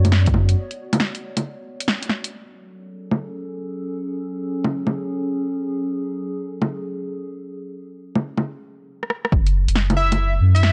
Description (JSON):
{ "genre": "future garage", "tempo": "137 BPM", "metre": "4/4", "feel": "swing 67% on 16ths", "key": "F# minor", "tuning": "A4 = 440 Hz", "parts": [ { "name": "warbly tape-like pad", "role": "sustained chords", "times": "0.0-8.9 s", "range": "F#3 to D5", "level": "-31 LUFS", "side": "equal", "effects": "chorus, built-in reverb, sidechain pumping" }, { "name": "soft dub sub bass", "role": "bass", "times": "0.0-0.5, 9.3-10.7 s", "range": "F#1 to F#2", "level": "-18 LUFS", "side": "equal", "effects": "tube saturation, sidechain pumping" }, { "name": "deep house drum kit", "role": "drums", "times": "0.0-10.7 s", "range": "bongos, hi-hat, rim click, snare drum", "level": "-24 LUFS", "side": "equal", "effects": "overdrive, low-pass filter on hats, vintage 12-bit sampler grit, low-pass filter on perc, low-pass filter on snare" }, { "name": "electronic kick drum", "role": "drums", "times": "0.3, 9.3-9.4 s", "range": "none", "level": "-22 LUFS", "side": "equal", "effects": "overdrive, vintage 12-bit sampler grit" }, { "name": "plucky unison lead", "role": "melody", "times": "10.0-10.7 s", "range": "E5", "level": "-24 LUFS", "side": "equal", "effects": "tape echo" } ], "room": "light reverb", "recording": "cassette tape", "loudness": "-23 LUFS", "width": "mono", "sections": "0.0-2.3 A section; 2.3-9.3 B section; 9.3-10.7 C section", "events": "break 0.6-2.3; band accent 1.9; filter sweep on drum 2.3-9.3; drum fill 9.0-9.3", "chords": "0.0 Bmadd9/F#; 2.3 F#m; 9.3 N.C.", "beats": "0.12 | 0.56 1.00 1.44 1.87 | 2.31 2.75 3.19 3.62 | 4.06 4.50 4.94 5.38 | 5.82 6.25 6.69 7.13 | 7.57 8.01 8.44 8.88 | 9.32 9.76 10.19 10.63" }